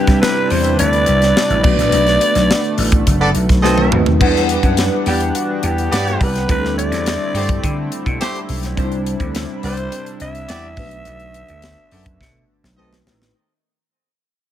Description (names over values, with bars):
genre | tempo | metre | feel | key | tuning
polished 1980s jazz-funk pop | 105 BPM | 4/4 | straight | E minor | A4 = 440 Hz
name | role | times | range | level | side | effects
growling alto saxophone | melody | 0.0-12.7 s | F#4 to E5 | -20 LUFS | equal | none
mellow tine electric piano | accompaniment | 0.0-13.4 s | G3 to F#5 | -21 LUFS | left 1 dB | medium stereo tremolo, ensemble chorus
chorused pulse-width pad | sustained chords | 0.0-13.3 s | B2 to F#5 | -26 LUFS | equal | none
vintage slap bass | bass | 0.1-13.3 s | F#1 to D3 | -19 LUFS | equal | none
tight funk drum kit | drums | 0.1-13.3 s | crash cymbal, hi-hat, kick drum, snare drum, toms | -19 LUFS | equal | none
warm horn section | second line | 3.2-13.0 s | A3 to D#5 | -22 LUFS | right 2 dB | tape echo
room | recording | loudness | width
studio ambience | none | -14 LUFS | side -11 dB against mid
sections
0.0-4.2 A section; 4.2-13.3 B section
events
band accent 1.9-4.2; drum fill 3.6-4.2, 12.2-13.3; fade-out 4.2-13.3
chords
0.0 D9sus4; 1.6 Bm7; 3.6 B7b9; 4.2 Em9; 6.5 D9sus4; 8.8 Cadd9; 10.8 Bm7; 12.8 B7b9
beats
0.22 0.79 1.36 | 1.93 2.50 3.06 3.63 | 4.21 4.78 5.35 5.92 | 6.49 7.06 7.63 8.20 | 8.77 9.34 9.91 10.48 | 11.05 11.63 12.20 12.77